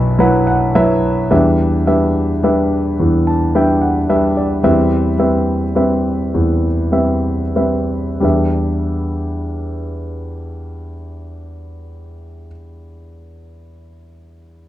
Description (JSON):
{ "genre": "folk", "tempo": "88-109 BPM", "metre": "3/4", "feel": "straight", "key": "E minor", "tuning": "A4 = 438 Hz", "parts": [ { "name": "warm concert grand piano", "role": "solo", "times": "0.0-14.7 s", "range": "B1 to A5", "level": "-14 LUFS", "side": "equal", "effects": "none" } ], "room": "light reverb", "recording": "dark, warm production", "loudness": "-13 LUFS", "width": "side -14 dB against mid", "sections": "0.0-1.3 A section; 1.3-8.2 B section; 8.2-12.3 C section", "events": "slowing down 4.7-8.2", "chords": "0.0 Bsus4; 1.3 Em7; 4.7 Cmaj7/E; 8.2 Em7", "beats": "0.22 0.77 | 1.33 1.89 2.44 | 3.00 3.55 4.10 | 4.65 5.20 5.77 | 6.34 6.94 7.57 | 8.24 8.91 9.59 | 10.27 10.94 11.62" }